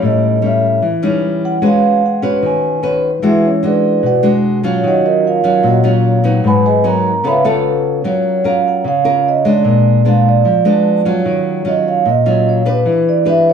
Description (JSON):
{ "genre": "bossa nova", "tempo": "150 BPM", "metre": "4/4", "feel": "straight", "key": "F# major from 8.0 s", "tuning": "A4 = 444 Hz", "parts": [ { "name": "nylon-string guitar", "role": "accompaniment", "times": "0.0-13.5 s", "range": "Ab2 to Cb5", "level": "-13 LUFS", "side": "left 2 dB", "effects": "none" }, { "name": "vibraphone with soft mallets", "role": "melody", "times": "0.1-13.5 s", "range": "Db4 to Cb6", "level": "-15 LUFS", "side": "right 4 dB", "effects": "none" } ], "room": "wet studio reverb, RT60 0.9 s", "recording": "heard from further back in the room", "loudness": "-11 LUFS", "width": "side -7 dB against mid", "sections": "0.0-8.0 A section; 8.0-13.5 B section", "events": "vibraphone solo 0.0-8.0", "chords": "0.0 A7#11; 1.6 Abm7; 3.2 E9; 4.8 Ebm9; 6.4 Abm7; 7.2 Db7b13; 8.0 F#maj7; 9.6 A#7b9; 11.3 D#m9; 12.9 Em7" }